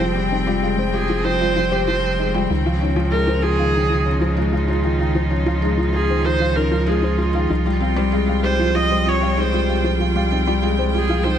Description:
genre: piano and strings electronica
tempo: 96 BPM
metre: 4/4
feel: straight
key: F minor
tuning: A4 = 440 Hz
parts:
  - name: warm string quartet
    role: sustained chords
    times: 0.0-11.4 s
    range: Db3 to G5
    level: -26 LUFS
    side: right 1 dB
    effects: none
  - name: soft round pluck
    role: arpeggios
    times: 0.0-11.3 s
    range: Eb4 to F5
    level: -28 LUFS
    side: left 1 dB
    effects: lush chorus, ping-pong delay
  - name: felt-muted upright piano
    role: riff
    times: 0.0-11.4 s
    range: Eb3 to G4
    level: -21 LUFS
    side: left 2 dB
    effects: none
  - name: round analog bass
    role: bass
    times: 0.0-11.4 s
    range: F1 to Db2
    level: -22 LUFS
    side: right 1 dB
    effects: none
  - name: warm viola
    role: melody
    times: 0.9-11.4 s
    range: Ab4 to Eb5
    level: -23 LUFS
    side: right 2 dB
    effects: ping-pong delay
room: moderate scoring stage reverb, RT60 1.5 s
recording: none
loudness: -17 LUFS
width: side -9 dB against mid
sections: 0.0-11.4 A section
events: none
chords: 0.0 Fmadd9; 2.5 Dbadd9; 7.5 Fmadd9/C

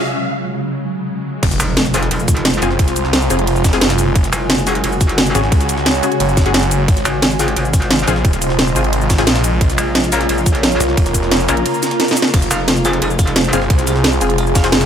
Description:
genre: dark technical drum and bass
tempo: 176 BPM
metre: 4/4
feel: straight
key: F phrygian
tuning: A4 = 440 Hz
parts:
  - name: swarming drone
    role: sustained chords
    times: 0.0-14.9 s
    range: C3 to Gb4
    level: -22 LUFS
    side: right 1 dB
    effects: built-in reverb, sidechain pumping
  - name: riser and impact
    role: sound effects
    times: 0.0-2.8 s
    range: none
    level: -24 LUFS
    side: equal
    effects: none
  - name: warbly tape-like pad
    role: texture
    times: 0.0-14.9 s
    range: F4 to Bb5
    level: -22 LUFS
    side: right 1 dB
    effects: chorus, built-in reverb, sidechain pumping
  - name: snarling distorted saw bass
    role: bass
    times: 1.4-14.9 s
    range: Eb1 to Db2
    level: -18 LUFS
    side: equal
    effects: distortion, sidechain pumping
  - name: drum and bass drum kit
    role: drums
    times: 1.4-14.9 s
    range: crash cymbal, hi-hat, shaker, snare drum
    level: -17 LUFS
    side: right 1 dB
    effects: overdrive
  - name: electronic kick drum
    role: drums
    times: 1.4-14.6 s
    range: none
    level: -14 LUFS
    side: equal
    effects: overdrive
  - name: jungle sampler-style drum kit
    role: drums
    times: 1.4-14.9 s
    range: hi-hat, ride cymbal, snare drum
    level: -28 LUFS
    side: right 1 dB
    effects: none
  - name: metallic wobble bass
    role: bass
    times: 1.6-13.5 s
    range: F1 to Bb1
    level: -18 LUFS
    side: equal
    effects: chorus
  - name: orchestra-hit-like synth stab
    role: stabs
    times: 1.9-14.7 s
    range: C4 to Bb4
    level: -23 LUFS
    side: left 5 dB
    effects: built-in reverb, ping-pong delay
  - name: clean electric guitar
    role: arpeggios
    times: 12.3-14.8 s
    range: F4 to F5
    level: -26 LUFS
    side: right 2 dB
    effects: sidechain pumping, ping-pong delay
room: digital ambience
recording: none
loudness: -12 LUFS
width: side -8 dB against mid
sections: 0.0-1.4 A section; 1.4-14.9 B section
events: build-up 0.0-1.4; filter sweep on synth drone 0.0-1.4; break 0.1-1.4; drop 1.4-14.9; impact 1.4-2.8; drum fill 12.0-12.3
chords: 0.0 Gbsus2; 1.4 Fm; 4.2 Gbsus2; 6.9 Ab6; 9.6 Bbm; 12.3 Fm

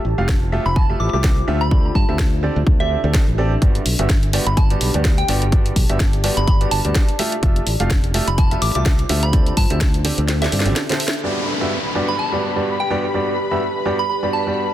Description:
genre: piano house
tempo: 126 BPM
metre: 4/4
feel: swing 56% on 16ths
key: G major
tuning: A4 = 441 Hz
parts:
  - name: fingered electric bass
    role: bass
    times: 0.0-10.7 s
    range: F1 to G2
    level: -20 LUFS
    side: equal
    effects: sidechain pumping
  - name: deep dark ambient pad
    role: texture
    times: 0.0-14.7 s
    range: D4 to A5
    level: -28 LUFS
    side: left 1 dB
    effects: chorus, built-in reverb, sidechain pumping
  - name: clear upright piano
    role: riff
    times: 0.2-14.6 s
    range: G2 to F5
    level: -23 LUFS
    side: right 2 dB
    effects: sidechain pumping
  - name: electronic kick drum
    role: drums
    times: 0.3-9.9 s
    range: none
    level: -16 LUFS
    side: equal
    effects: none
  - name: house drum kit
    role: drums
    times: 0.3-14.7 s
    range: cabasa, crash cymbal, hi-hat, snare drum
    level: -24 LUFS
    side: equal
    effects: low-pass filter on snare, low-pass filter on hats, low-pass filter on cymbals, low-pass filter on perc, low-pass filter on room
  - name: soft synth bell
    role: melody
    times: 0.7-14.7 s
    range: E5 to D6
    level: -25 LUFS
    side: equal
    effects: chorus, phaser, digital delay
  - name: dark studio string section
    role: sustained chords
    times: 11.2-14.7 s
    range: B4 to B5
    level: -27 LUFS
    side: left 2 dB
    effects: sidechain pumping
  - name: downlifter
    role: sound effects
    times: 11.2-14.7 s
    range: none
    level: -28 LUFS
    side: equal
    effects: none
room: digital ambience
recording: dense, heavily limited modern master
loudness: -16 LUFS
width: side -13 dB against mid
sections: 0.0-11.2 A section; 11.2-14.7 B section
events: kick drops out 10.3-11.2; drum fill 10.3-11.2; band accent 11.1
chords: 0.0 Fmaj9; 1.7 D7sus4; 3.6 Gmaj7; 7.2 Fmaj9; 9.3 D7sus4; 11.2 Gmaj7

